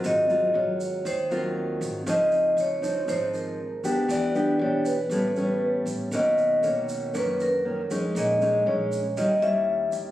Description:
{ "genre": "bossa nova", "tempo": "118 BPM", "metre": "4/4", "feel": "straight", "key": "unclear", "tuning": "A4 = 440 Hz", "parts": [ { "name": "nylon-string guitar", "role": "accompaniment", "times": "0.0-10.1 s", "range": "F#2 to G4", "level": "-28 LUFS", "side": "equal", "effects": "none" }, { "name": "upright bass", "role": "bass", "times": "0.0-10.1 s", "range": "Ab1 to F#2", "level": "-37 LUFS", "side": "equal", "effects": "none" }, { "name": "egg shaker", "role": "percussion", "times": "0.0-10.1 s", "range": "none", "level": "-43 LUFS", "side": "right 3 dB", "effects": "none" }, { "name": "vibraphone with soft mallets", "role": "melody", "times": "0.1-9.9 s", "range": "Bb4 to Fb5", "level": "-24 LUFS", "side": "equal", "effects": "none" } ], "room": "light reverb", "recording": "recorded on a phone in the room, studio reverb, compression", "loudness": "-22 LUFS", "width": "side -14 dB against mid", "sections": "0.0-10.1 A section", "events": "none", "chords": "0.0 Ab13; 2.1 Dbmaj9; 4.1 Em7; 5.1 A9; 6.1 Bmaj9; 8.2 Bbm7; 9.2 Eb7b9", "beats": "| 0.04 0.55 1.05 1.56 | 2.07 2.57 3.08 3.59 | 4.10 4.60 5.11 5.62 | 6.12 6.63 7.14 7.65 | 8.15 8.66 9.17 9.68" }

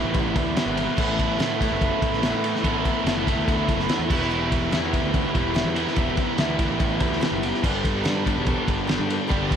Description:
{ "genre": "classic rock", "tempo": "144 BPM", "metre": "4/4", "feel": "straight", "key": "E minor", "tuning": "A4 = 440 Hz", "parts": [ { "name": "picked twelve-string acoustic guitar", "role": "accompaniment", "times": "0.0-9.6 s", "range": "E2 to A4", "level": "-33 LUFS", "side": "left 6 dB", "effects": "none" }, { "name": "bright tonewheel organ", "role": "sustained chords", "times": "0.0-9.6 s", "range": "B3 to B4", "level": "-36 LUFS", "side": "equal", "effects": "none" }, { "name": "biting overdriven guitar", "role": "riff", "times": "0.0-9.6 s", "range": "E2 to G4", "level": "-26 LUFS", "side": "right 12 dB", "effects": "none" }, { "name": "distorted electric guitar", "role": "riff", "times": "0.0-9.6 s", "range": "E3 to B4", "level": "-28 LUFS", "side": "left 14 dB", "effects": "distortion" }, { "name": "fuzz picked electric bass", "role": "bass", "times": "0.0-9.5 s", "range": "E1 to A2", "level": "-29 LUFS", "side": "equal", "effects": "overdrive" }, { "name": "cloth-damped thuddy drum kit", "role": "drums", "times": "0.1-9.6 s", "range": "crash cymbal, kick drum, ride cymbal, snare drum", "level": "-25 LUFS", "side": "equal", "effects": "none" } ], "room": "studio ambience", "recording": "none", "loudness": "-20 LUFS", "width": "side -8 dB against mid", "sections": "0.0-9.6 A section", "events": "none", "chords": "0.0 Em; 1.0 Asus2; 4.1 Em", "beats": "0.14 0.56 | 0.98 1.40 1.81 2.23 | 2.64 3.06 3.48 3.89 | 4.31 4.72 5.14 5.56 | 5.97 6.39 6.80 7.22 | 7.64 8.05 8.47 8.88 | 9.30" }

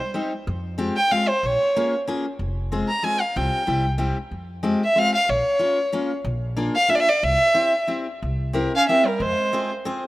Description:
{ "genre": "musette waltz", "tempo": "186 BPM", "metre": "3/4", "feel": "swing 54% on 8ths", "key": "F harmonic minor", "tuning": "A4 = 444 Hz", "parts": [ { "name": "dark violin", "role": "melody", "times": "0.0-9.7 s", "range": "Bb4 to Bb5", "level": "-20 LUFS", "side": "equal", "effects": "none" }, { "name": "warm clarinet", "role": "second line", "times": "0.0-0.2, 8.8-9.7 s", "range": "G3 to Db4", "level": "-27 LUFS", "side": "right 2 dB", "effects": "none" }, { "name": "picked steel-string acoustic guitar", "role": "accompaniment", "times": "0.1-10.0 s", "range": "G3 to C5", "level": "-26 LUFS", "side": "left 2 dB", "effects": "none" }, { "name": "upright bass", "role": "bass", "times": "0.5-9.3 s", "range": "F1 to F2", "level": "-26 LUFS", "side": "equal", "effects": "none" } ], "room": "light reverb, studio ambience", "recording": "rough home demo mix, faint mains hum", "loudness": "-19 LUFS", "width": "side -17 dB against mid", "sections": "0.5-10.1 A section", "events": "none", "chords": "0.5 Fmadd9; 1.4 Bbm7; 2.4 Fm; 3.4 Csus4; 3.7 C; 4.3 Fmadd9; 5.3 Bbm7; 6.3 Bb7; 7.2 C; 8.2 C7; 9.2 Fm", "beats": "0.14 | 0.47 0.79 1.11 | 1.43 1.75 2.07 | 2.39 2.71 3.03 | 3.35 3.67 4.00 | 4.32 4.64 4.97 | 5.29 5.61 5.94 | 6.26 6.58 6.91 | 7.23 7.56 7.88 | 8.21 8.54 8.87 | 9.20 9.53 9.85" }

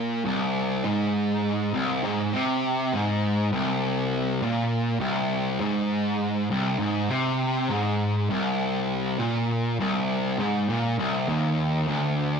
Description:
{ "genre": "metal", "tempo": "101 BPM", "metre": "4/4", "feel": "straight", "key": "C minor", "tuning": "A4 = 436 Hz", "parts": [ { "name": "fuzz guitar", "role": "solo", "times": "0.0-12.4 s", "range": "C2 to C3", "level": "-23 LUFS", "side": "equal", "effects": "distortion" } ], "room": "moderate large studio reverb, RT60 1.4 s", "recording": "none", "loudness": "-23 LUFS", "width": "side -6 dB against mid", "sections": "0.0-12.4 A section", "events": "none", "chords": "none", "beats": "0.54 | 1.14 1.74 2.33 2.93 | 3.53 4.12 4.72 5.32 | 5.91 6.51 7.10 7.70 | 8.30 8.89 9.49 10.09 | 10.68 11.28 11.88" }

